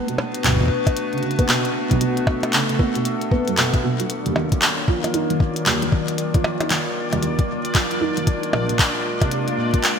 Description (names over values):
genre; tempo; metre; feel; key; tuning
IDM; 115 BPM; 4/4; swing 62% on 16ths; unclear; A4 = 443 Hz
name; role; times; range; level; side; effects
warbly tape-like pad; sustained chords; 0.0-10.0 s; Eb3 to B4; -24 LUFS; left 2 dB; chorus, built-in reverb, shimmer reverb
felt-muted upright piano; arpeggios; 0.0-9.7 s; Bb1 to Eb4; -24 LUFS; right 2 dB; wide subtle chorus, ping-pong delay, shimmer reverb
glitchy drum kit; drums; 0.1-10.0 s; handclaps, hi-hat, percussion blips; -22 LUFS; equal; overdrive, gated reverb, ping-pong delay
electronic kick drum; drums; 0.4-9.8 s; none; -19 LUFS; equal; overdrive
bubbling stepped-filter texture; texture; 4.1-10.0 s; D4 to D5; -29 LUFS; left 2 dB; chorus, built-in reverb, shimmer reverb
room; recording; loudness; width
moderate lush hall reverb, RT60 2.6 s; bright 1980s-style digital production; -18 LUFS; side -7 dB against mid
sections
0.0-10.0 A section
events
none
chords
0.0 Bm7; 4.1 Ebmadd9; 8.3 Bb7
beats
0.45 0.97 1.49 | 2.01 2.53 3.05 3.58 | 4.10 4.62 5.14 5.66 | 6.18 6.71 7.23 7.75 | 8.27 8.79 9.31 9.84